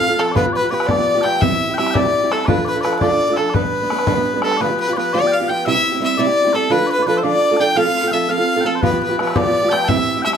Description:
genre	celtic folk, Celtic jig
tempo	113 BPM (dotted quarters)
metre	6/8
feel	straight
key	G mixolydian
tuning	A4 = 438 Hz
part	clear fiddle	melody	0.0-10.4 s	A4 to G5	-18 LUFS	left 1 dB	none
part	mellow small bagpipes	second line	0.0-10.4 s	A4 to A5	-22 LUFS	left 5 dB	none
part	fingerpicked old ladder-braced acoustic guitar	accompaniment	0.0-10.4 s	G2 to B4	-20 LUFS	right 4 dB	none
part	bodhran	percussion	0.2-4.6, 8.8-10.4 s	none	-22 LUFS	left 2 dB	none
room	moderate small room reverb, RT60 0.5 s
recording	none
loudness	-14 LUFS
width	side -7 dB against mid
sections	0.0-4.6 A section; 4.6-10.4 A section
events	none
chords	0.4 G7; 1.4 C; 2.5 Dm; 3.5 G; 4.6 G7; 5.6 C; 6.7 Dm; 7.8 F; 8.8 G7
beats	| 0.36 0.89 | 1.42 1.94 | 2.47 3.00 | 3.53 4.06 | 4.59 5.12 | 5.65 6.18 | 6.71 7.24 | 7.77 8.30 | 8.83 9.36 | 9.89

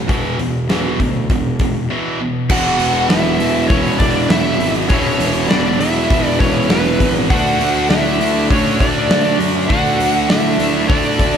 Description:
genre	hard rock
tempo	100 BPM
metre	4/4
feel	straight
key	unclear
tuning	A4 = 440 Hz
part	heavy high-gain guitar	riff	0.0-11.4 s	E2 to D4	-22 LUFS	left 10 dB	distortion
part	tight distorted guitar	riff	0.0-11.4 s	E2 to D4	-21 LUFS	right 10 dB	distortion
part	fuzz picked electric bass	bass	0.0-11.4 s	E1 to F#2	-22 LUFS	equal	overdrive
part	big rock drum kit	drums	0.1-11.3 s	crash cymbal, hi-hat, kick drum, snare drum	-18 LUFS	equal	none
part	smooth overdriven lead guitar	melody	2.5-11.4 s	B4 to F#5	-19 LUFS	left 1 dB	slapback echo
part	smooth overdriven lead guitar	second line	2.5-11.4 s	B3 to F#4	-24 LUFS	right 3 dB	none
part	distorted electric guitar	riff	2.5-11.4 s	E2 to D4	-24 LUFS	equal	distortion
room	moderate concert hall reverb, RT60 2.3 s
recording	big arena sound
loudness	-13 LUFS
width	side -8 dB against mid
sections	0.0-2.5 A section; 2.5-11.4 B section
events	none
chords	0.0 E5; 2.5 E; 7.3 D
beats	| 0.10 0.70 1.30 1.90 | 2.50 3.11 3.71 4.31 | 4.91 5.51 6.11 6.71 | 7.31 7.91 8.51 9.11 | 9.70 10.30 10.90

